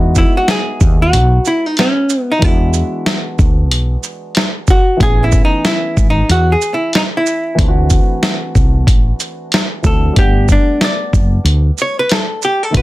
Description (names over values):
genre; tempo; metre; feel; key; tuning
hip hop, jazz-hop; 93 BPM; 4/4; swing 58% on 16ths; E major; A4 = 440 Hz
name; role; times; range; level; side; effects
dark upright piano; accompaniment; 0.0-12.8 s; D#3 to F#5; -23 LUFS; equal; none
woody fretless electric bass; bass; 0.0-12.8 s; F#1 to E2; -13 LUFS; equal; none
archtop guitar, miked and amplified; melody; 0.2-12.8 s; C#4 to D5; -16 LUFS; equal; none
lo-fi sampler-style drum kit; drums; 0.2-12.8 s; hi-hat, kick drum, shaker, snare drum; -13 LUFS; equal; none
room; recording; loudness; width
light reverb; dense, heavily limited modern master; -11 LUFS; side -18 dB against mid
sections
0.0-12.8 A section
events
hollow-body jazz guitar solo 0.0-12.8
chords
0.0 Emaj7; 2.4 E7; 5.0 Amaj7; 7.6 D7; 10.2 Gmaj7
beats
0.48 1.13 1.77 | 2.42 3.06 3.71 4.36 | 5.00 5.65 6.29 6.94 | 7.58 8.23 8.87 9.52 | 10.16 10.81 11.45 12.10 | 12.74